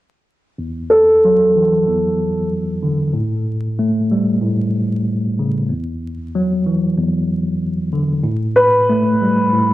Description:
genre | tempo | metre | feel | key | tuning
hip hop | 94 BPM | 4/4 | swing 55% on 16ths | E minor | A4 = 439 Hz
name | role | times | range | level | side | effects
mellow tine electric piano | accompaniment | 0.6-9.7 s | E2 to A3 | -17 LUFS | equal | medium stereo tremolo, cassette tape, high-pass filter, low-pass filter
dark upright piano | melody | 0.9-2.5, 8.6-9.7 s | A4 to B4 | -13 LUFS | equal | high-pass filter, low-pass filter, tape echo
room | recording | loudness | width
light reverb | dry, gritty hardware recording, vinyl crackle | -14 LUFS | side -15 dB against mid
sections
0.6-9.7 A section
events
filter sweep 0.6-9.7; break 3.1-8.2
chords
0.6 E9sus4; 3.1 A7(no3); 5.7 Esus2; 8.2 A7(no3)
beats
| 0.58 1.22 1.86 2.50 | 3.14 3.77 4.41 5.05 | 5.69 6.33 6.97 7.61 | 8.24 8.88 9.52

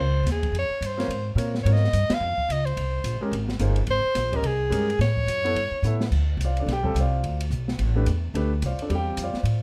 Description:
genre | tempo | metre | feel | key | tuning
modal jazz | 216 BPM | 4/4 | swing 60% on 8ths | D dorian from 6.1 s | A4 = 441 Hz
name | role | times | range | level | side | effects
warm soprano saxophone | melody | 0.0-6.0 s | Ab4 to F5 | -28 LUFS | equal | none
upright bass | bass | 0.0-9.6 s | G1 to Bb2 | -26 LUFS | equal | none
open jazz drum kit | drums | 0.3-9.5 s | crash cymbal, hi-hat, kick drum, ride cymbal, snare drum | -35 LUFS | equal | none
warm grand piano | accompaniment | 1.0-9.6 s | G3 to G5 | -32 LUFS | equal | none
room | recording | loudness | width
light reverb | none | -25 LUFS | mono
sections
0.0-6.1 A section; 6.1-9.6 B section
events
band accent 2.1; drum fill 5.8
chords
0.0 Bbm9; 1.7 Fm (rootless); 5.0 A7; 6.1 Dm7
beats
0.26 | 0.54 0.82 1.10 1.38 | 1.66 1.93 2.21 2.49 | 2.77 3.05 3.33 3.61 | 3.88 4.16 4.44 4.72 | 5.00 5.28 5.55 5.83 | 6.11 6.39 6.67 6.95 | 7.22 7.50 7.78 8.06 | 8.34 8.62 8.89 9.17 | 9.45

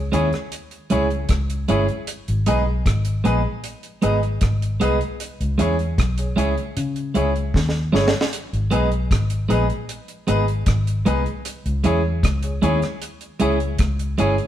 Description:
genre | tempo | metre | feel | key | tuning
roots reggae | 77 BPM | 4/4 | straight | unclear | A4 = 440 Hz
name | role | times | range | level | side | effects
vintage muted fingered electric bass | bass | 0.0-14.4 s | G1 to C#3 | -22 LUFS | equal | none
clean electric guitar | accompaniment | 0.1-14.4 s | G#3 to G#4 | -23 LUFS | right 3 dB | none
clear grand piano | stabs | 0.1-14.3 s | D#4 to C#5 | -25 LUFS | left 1 dB | none
deep reggae drum kit | drums | 0.1-14.5 s | hi-hat, kick drum, rim click, snare drum | -23 LUFS | equal | none
room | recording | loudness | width
moderate stone room reverb, RT60 1.3 s | band playing live in one room | -18 LUFS | side -11 dB against mid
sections
0.0-14.5 A section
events
drum fill 7.5-8.3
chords
0.0 C#m; 2.1 G#m; 5.2 C#m; 8.3 G#m; 11.5 C#m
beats
0.52 1.30 | 2.08 2.86 3.64 4.42 | 5.20 5.98 6.76 7.54 | 8.33 9.11 9.89 10.67 | 11.45 12.23 13.02 13.80

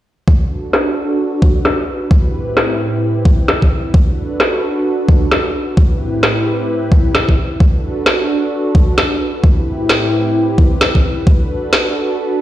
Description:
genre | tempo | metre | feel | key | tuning
UK garage, two-step garage | 131 BPM | 4/4 | swing 61% on 16ths | B phrygian | A4 = 439 Hz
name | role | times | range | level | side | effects
warm analog pad | sustained chords | 0.3-12.4 s | A2 to B4 | -18 LUFS | equal | chorus, phaser, sidechain pumping
electronic kick drum | drums | 0.3-11.4 s | none | -10 LUFS | equal | overdrive
electronic snare drum | drums | 0.7-11.8 s | none | -16 LUFS | equal | overdrive, low-pass filter on snare
room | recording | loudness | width
moderate plate reverb, RT60 1.5 s | played on a big sound system in a bare room, stone room reverb | -12 LUFS | side -13 dB against mid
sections
0.3-12.4 A section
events
filter sweep on drum 0.3-12.4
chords
0.3 Bm7; 2.1 Am7; 3.9 Bm7; 5.8 Am7; 7.6 Bm7; 9.4 Am7; 11.3 Bm7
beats
| 0.28 0.73 1.19 1.65 | 2.11 2.57 3.02 3.48 | 3.94 4.40 4.86 5.31 | 5.77 6.23 6.69 7.15 | 7.60 8.06 8.52 8.98 | 9.44 9.89 10.35 10.81 | 11.27 11.73 12.18

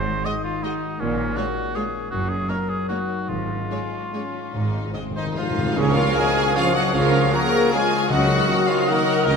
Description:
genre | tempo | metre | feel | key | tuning
classical, orchestral ballroom waltz | 137-173 BPM | 3/4 | rubato | Db major | A4 = 445 Hz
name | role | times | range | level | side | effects
warm oboe | second line | 0.0-9.4 s | Db4 to Gb5 | -29 LUFS | right 1 dB | none
concert harp | arpeggios | 0.0-9.4 s | Gb2 to Eb5 | -28 LUFS | left 6 dB | none
rich symphonic cello section | bass | 0.0-9.4 s | Gb2 to Db3 | -30 LUFS | right 4 dB | none
rich symphonic double bass section | bass | 0.0-9.4 s | Gb1 to Db2 | -31 LUFS | right 4 dB | none
bright studio violin section | melody | 0.3-9.4 s | Db4 to Eb5 | -30 LUFS | left 6 dB | none
rich studio violin section | second line | 0.3-9.4 s | Ab3 to Bb5 | -27 LUFS | left 3 dB | none
clear symphonic viola section | accompaniment | 0.3-9.4 s | Ab3 to Bb4 | -28 LUFS | right 2 dB | none
cymbal swell and tam-tam | percussion | 3.3-7.3 s | none | -33 LUFS | equal | none
timpani | percussion | 3.3-5.7, 8.1-8.6 s | Ab2 to Db3 | -31 LUFS | left 2 dB | none
dark French horn section | sustained chords | 5.2-9.4 s | Db3 to Bb3 | -27 LUFS | left 4 dB | none
clear trumpet | stabs | 5.2-9.4 s | Db4 to Bb4 | -28 LUFS | right 2 dB | none
clear clarinet | second line | 5.8-9.4 s | Ab4 to Bb4 | -30 LUFS | left 1 dB | none
large flute ensemble | second line | 5.8-9.4 s | Db6 to Eb6 | -31 LUFS | right 2 dB | none
clear bassoon | accompaniment | 5.8-9.4 s | Eb3 to F3 | -29 LUFS | right 2 dB | none
mellow tuba | bass | 5.8-9.4 s | Db2 | -29 LUFS | right 4 dB | none
clear trombone section | sustained chords | 6.2-9.0 s | Eb3 to Db4 | -31 LUFS | right 3 dB | none
room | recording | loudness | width
wet concert hall reverb, RT60 2.2 s | none | -19 LUFS | side -5 dB against mid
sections
0.0-5.8 A section; 5.8-9.4 B section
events
timpani fill 4.5-5.8; band accent 5.8-6.2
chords
0.0 Ab7; 1.0 Bbm7; 2.1 Ebm7/Gb; 3.3 Db/Ab; 4.5 Ab; 5.8 Db; 8.1 Ebm7/Db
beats
0.25 0.64 | 1.00 1.37 1.75 | 2.11 2.49 2.90 | 3.29 3.70 4.13 | 4.54 4.95 5.37 | 5.77 6.16 6.56 | 6.93 7.32 7.72 | 8.10 8.48 8.88 | 9.26

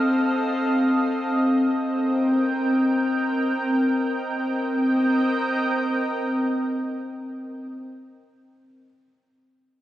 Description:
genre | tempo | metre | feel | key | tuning
dream pop | free time | none | none | C dorian | A4 = 440 Hz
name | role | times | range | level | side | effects
lush unison pad | sustained chords | 0.0-7.7 s | C4 to G5 | -21 LUFS | equal | chorus
room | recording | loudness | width
moderate plate reverb, RT60 3.1 s | recorded on a phone in the room, club reverb | -20 LUFS | side -13 dB against mid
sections
0.0-4.7 A section; 4.7-7.4 B section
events
none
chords
0.0 F7; 2.0 Cm7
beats
free time

